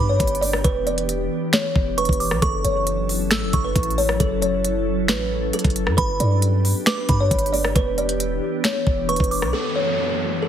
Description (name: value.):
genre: hip hop, trap.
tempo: 135 BPM.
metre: 4/4.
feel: half-time.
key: F# phrygian.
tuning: A4 = 440 Hz.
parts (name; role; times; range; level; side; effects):
kalimba; melody; 0.0-10.5 s; A4 to D5; -24 LUFS; equal; low-pass filter, digital delay.
delicate synth tine bell; second line; 0.0-9.5 s; B5 to E6; -28 LUFS; right 4 dB; chorus, digital delay.
glassy FM pad; sustained chords; 0.0-10.5 s; F#2 to A4; -27 LUFS; left 1 dB; ensemble chorus, built-in reverb.
warm 808-style bass; bass; 0.0-9.5 s; E1 to G2; -24 LUFS; equal; none.
trap drum kit; drums; 0.2-9.5 s; finger snaps, hi-hat, kick drum, rim click, snare drum; -22 LUFS; equal; overdrive.
downlifter; sound effects; 9.5-10.5 s; none; -26 LUFS; right 1 dB; none.
room: light reverb, digital ambience.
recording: heavily compressed radio sound, multiband compression.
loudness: -18 LUFS.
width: side -9 dB against mid.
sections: 0.0-9.5 A section.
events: none.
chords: 0.0 G; 0.6 Em7; 2.4 F#m7; 6.0 G; 7.8 Em7; 9.5 F#m7.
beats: 0.20 | 0.65 1.09 1.53 1.98 | 2.42 2.87 3.31 3.76 | 4.20 4.64 5.09 5.53 | 5.98 6.42 6.87 7.31 | 7.76 8.20 8.64 9.09 | 9.53 9.98 10.42.